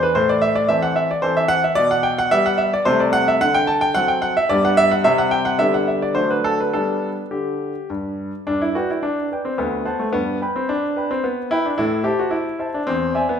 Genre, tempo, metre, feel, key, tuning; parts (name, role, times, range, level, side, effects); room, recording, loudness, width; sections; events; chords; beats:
classical-period piano sonatina; 109 BPM; 3/4; rubato; G major; A4 = 439 Hz
clear grand piano; solo; 0.0-13.4 s; D2 to B5; -17 LUFS; equal
moderate recital hall reverb, RT60 1.6 s; minimal, uncompressed stereo recording; -17 LUFS; side -8 dB against mid
0.0-8.5 A section; 8.5-13.4 A section
0.1 Am; 1.8 G/B; 2.9 Am7/C; 3.4 D7; 4.5 G; 5.1 C5; 5.6 G/D; 6.2 D; 6.7 G; 9.6 D7; 10.1 G; 11.8 Am; 12.9 E7
| 0.15 0.69 1.23 | 1.77 2.32 2.87 | 3.42 3.96 4.51 | 5.07 5.62 6.17 | 6.75 7.32 7.89 | 8.47 9.03 9.59 | 10.14 10.69 11.25 | 11.79 12.33 12.88